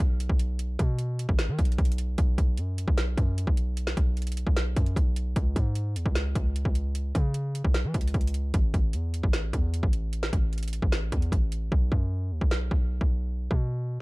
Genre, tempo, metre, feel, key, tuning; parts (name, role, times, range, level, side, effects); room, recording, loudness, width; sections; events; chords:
hip hop, trap; 151 BPM; 4/4; half-time; A4 = 440 Hz
hard-hitting 808-style bass; bass; 0.0-14.0 s; A1 to E3; -28 LUFS; equal
trap drum kit; drums; 0.0-13.6 s; hi-hat, kick drum, snare drum; -26 LUFS; equal
little or no reverb; dark, warm production; -24 LUFS; side -24 dB against mid
0.0-11.7 A section; 11.7-14.0 B section
hi-hats muted 11.7-14.0